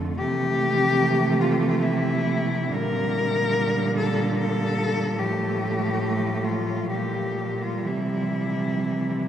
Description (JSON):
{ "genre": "classical, lyrical piece for cello ensemble", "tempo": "61-75 BPM", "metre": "3/4", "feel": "rubato", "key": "unclear", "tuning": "A4 = 440 Hz", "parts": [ { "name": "clear cello", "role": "second line", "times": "0.0-9.3 s", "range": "G3 to A3", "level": "-29 LUFS", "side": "right 4 dB", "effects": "none" }, { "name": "rich cello", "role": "accompaniment", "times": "0.0-9.3 s", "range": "D3 to F3", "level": "-30 LUFS", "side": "equal", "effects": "none" }, { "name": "rich cello", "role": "bass", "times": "0.0-9.3 s", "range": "F2 to C3", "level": "-27 LUFS", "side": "right 1 dB", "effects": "none" }, { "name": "rich cello", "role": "melody", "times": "0.2-9.3 s", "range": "E4 to Bb4", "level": "-26 LUFS", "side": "left 3 dB", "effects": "none" } ], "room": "wet huge ambient reverb, RT60 8.0 s", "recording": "in a vast, echoing space", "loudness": "-22 LUFS", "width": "side -10 dB against mid", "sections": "0.0-9.3 A section", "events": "none", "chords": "0.2 Am/C; 2.7 Gm/Bb; 5.2 F/A; 6.9 Gm7/Bb; 7.9 C" }